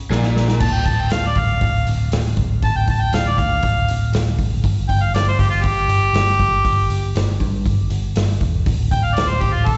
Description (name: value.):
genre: blues rock power trio and southern rock.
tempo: 119 BPM.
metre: 4/4.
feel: straight.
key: D minor.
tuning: A4 = 440 Hz.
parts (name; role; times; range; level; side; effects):
overdriven semi-hollow guitar; riff; 0.1-0.6 s; Bb2; -24 LUFS; equal; slapback echo.
vintage muted picked electric bass; bass; 0.1-9.8 s; D1 to G2; -22 LUFS; equal; none.
vintage drum kit; drums; 0.1-9.8 s; crash cymbal, hi-hat, kick drum, snare drum; -24 LUFS; equal; none.
mellow harmonica; melody; 0.6-9.8 s; F4 to A5; -23 LUFS; equal; overdrive, slapback echo, analog delay.
room: small room ambience.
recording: live gig heard through the venue's PA, recital hall reverb, nothing above 7.9 kHz.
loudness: -18 LUFS.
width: mono.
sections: 0.6-9.8 A section.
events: drum fill 0.1-0.6; harmonica solo 0.6-9.8.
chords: 0.0 N.C.; 0.6 Dm; 4.6 N.C.; 8.7 D5.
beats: 0.11 | 0.61 1.12 1.62 2.13 | 2.63 3.13 3.64 4.14 | 4.64 5.15 5.65 6.16 | 6.66 7.16 7.66 8.17 | 8.67 9.17 9.67.